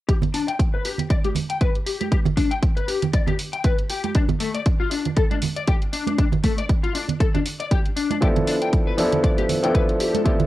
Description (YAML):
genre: nu-disco, nu disco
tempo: 118 BPM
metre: 4/4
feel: swing 56% on 16ths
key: G mixolydian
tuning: A4 = 440 Hz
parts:
  - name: electric guitar at the edge of break-up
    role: riff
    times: 0.1-10.3 s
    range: A3 to G5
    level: -26 LUFS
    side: left 6 dB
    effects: ensemble chorus, low-pass filter, cassette tape
  - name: electronic hi-hat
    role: drums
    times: 0.1-10.5 s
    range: none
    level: -32 LUFS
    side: right 1 dB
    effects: overdrive
  - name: electronic kick drum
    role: drums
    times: 0.1-10.4 s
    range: none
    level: -20 LUFS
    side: equal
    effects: overdrive
  - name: congas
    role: percussion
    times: 0.2-10.5 s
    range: none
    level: -26 LUFS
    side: right 7 dB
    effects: none
  - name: clear grand piano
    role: accompaniment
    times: 8.2-10.5 s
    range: F3 to A4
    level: -21 LUFS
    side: equal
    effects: sidechain pumping, cassette tape
room: light reverb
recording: home recording on cassette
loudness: -19 LUFS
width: side -15 dB against mid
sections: 0.1-10.5 A section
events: none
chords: 0.1 G; 4.2 N.C.; 8.2 G13